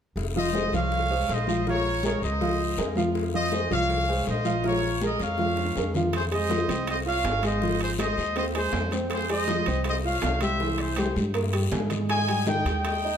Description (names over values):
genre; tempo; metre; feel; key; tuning
latin, salsa; 161 BPM; 4/4; straight; F minor; A4 = 438 Hz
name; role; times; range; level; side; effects
upright bass; bass; 0.2-13.2 s; F1 to Ab2; -30 LUFS; equal; none
bongos; percussion; 0.2-13.0 s; none; -35 LUFS; left 5 dB; none
congas; percussion; 0.2-13.2 s; none; -35 LUFS; equal; none
guiro; percussion; 0.2-13.2 s; none; -41 LUFS; left 8 dB; none
bright trumpet section; melody; 0.4-13.2 s; Ab4 to Ab5; -28 LUFS; equal; none
dark upright piano; accompaniment; 0.4-13.2 s; Eb3 to F5; -28 LUFS; right 1 dB; none
timbales; percussion; 6.1-13.0 s; none; -36 LUFS; right 6 dB; none
room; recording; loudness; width
wet large studio reverb, RT60 1.4 s; none; -23 LUFS; side -8 dB against mid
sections
0.2-6.1 A section; 6.1-13.2 B section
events
drum fill 5.0-6.1, 11.0-12.1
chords
0.2 Fm7; 1.7 Bbm7; 6.1 Fm7; 7.6 Ab6; 9.1 Fm9; 10.6 C7; 12.1 Abmaj7(no3)